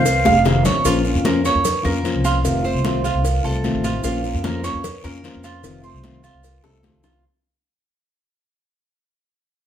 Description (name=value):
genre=latin, Cuban son and guajira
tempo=150 BPM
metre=4/4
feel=straight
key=Bb harmonic minor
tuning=A4 = 441 Hz
part: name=breathy concert flute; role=melody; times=0.0-0.7 s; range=F5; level=-19 LUFS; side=right 1 dB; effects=none
part: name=fingerpicked plugged-in steel-string acoustic guitar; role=accompaniment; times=0.0-7.2 s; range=C3 to F4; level=-23 LUFS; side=left 3 dB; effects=none
part: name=Cuban tres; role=arpeggios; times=0.0-7.2 s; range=F4 to F5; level=-23 LUFS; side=right 6 dB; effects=none
part: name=upright bass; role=bass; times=0.0-7.2 s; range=F1 to F2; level=-22 LUFS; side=equal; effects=none
part: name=congas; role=percussion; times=0.1-7.1 s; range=none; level=-26 LUFS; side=equal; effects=none
part: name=cowbell and bongos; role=percussion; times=0.1-7.2 s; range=none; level=-28 LUFS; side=left 5 dB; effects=none
part: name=guiro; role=percussion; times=0.1-7.2 s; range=none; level=-35 LUFS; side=left 4 dB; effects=none
part: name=maracas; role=percussion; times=0.1-7.2 s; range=none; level=-32 LUFS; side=right 5 dB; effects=none
room=wet studio reverb, RT60 0.7 s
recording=heard from further back in the room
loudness=-16 LUFS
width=side -9 dB against mid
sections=0.9-7.2 A section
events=drum fill 0.3-0.9, 6.6-7.2; fade-out 0.9-7.2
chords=0.0 F7; 0.9 Bbm; 2.4 F7; 4.0 Bbm; 5.6 F7